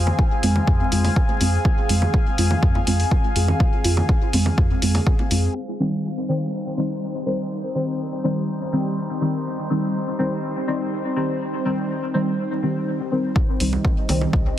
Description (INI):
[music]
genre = dub techno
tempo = 123 BPM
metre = 4/4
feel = straight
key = C minor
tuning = A4 = 440 Hz
[part]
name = warbly tape-like pad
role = sustained chords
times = 0.0-14.6 s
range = G3 to Ab5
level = -28 LUFS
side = equal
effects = chorus, built-in reverb, phaser, sidechain pumping
[part]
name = deep mellow chord stab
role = stabs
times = 0.0-14.3 s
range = Eb3 to F4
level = -24 LUFS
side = equal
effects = chorus, phaser, sidechain pumping, dub echo
[part]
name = warm sub bass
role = bass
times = 0.0-5.5, 13.6-14.5 s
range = C2 to F2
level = -21 LUFS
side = equal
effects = sidechain pumping
[part]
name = bongos and congas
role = percussion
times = 0.1-5.3, 13.7-14.3 s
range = none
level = -30 LUFS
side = right 1 dB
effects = overdrive, sidechain pumping on perc, dub echo
[part]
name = electronic kick drum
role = drums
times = 0.2-5.2, 13.4-14.4 s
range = none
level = -20 LUFS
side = equal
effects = none
[part]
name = electronic hi-hat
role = drums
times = 0.4-5.4, 13.6-14.2 s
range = none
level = -28 LUFS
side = left 1 dB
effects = low-pass filter on hats, low-pass filter on room
[sound]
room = light reverb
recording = dense, heavily limited modern master, vinyl crackle, low-pass filter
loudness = -19 LUFS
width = side -12 dB against mid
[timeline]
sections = 0.0-5.6 A section; 5.6-13.4 B section; 13.4-14.6 A section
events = filter sweep on synth stab 0.0-5.6; filter sweep 5.6-13.4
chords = 0.0 Fm; 5.6 Cm